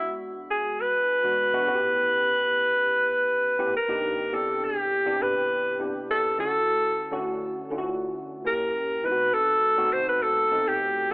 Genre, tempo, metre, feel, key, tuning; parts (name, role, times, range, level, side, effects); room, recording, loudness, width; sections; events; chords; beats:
pop; 102 BPM; 4/4; straight; B minor; A4 = 441 Hz
breathy alto saxophone; melody; 0.0-11.1 s; E4 to C5; -22 LUFS; equal
tine electric piano; accompaniment; 0.0-11.1 s; E2 to A4; -31 LUFS; equal; analog chorus
moderate plate reverb, RT60 3.6 s; telephone sound; -22 LUFS; side -30 dB against mid
0.0-4.3 A section; 4.3-11.1 B section
0.0 E7; 1.7 A7; 3.7 Cm7; 4.3 Cmaj7; 6.4 Dmaj9; 8.4 F#7b9; 9.0 B7b9
0.21 0.80 1.38 | 1.97 2.56 3.15 3.74 | 4.33 4.91 5.50 6.09 | 6.68 7.27 7.86 8.45 | 9.04 9.63 10.22 10.80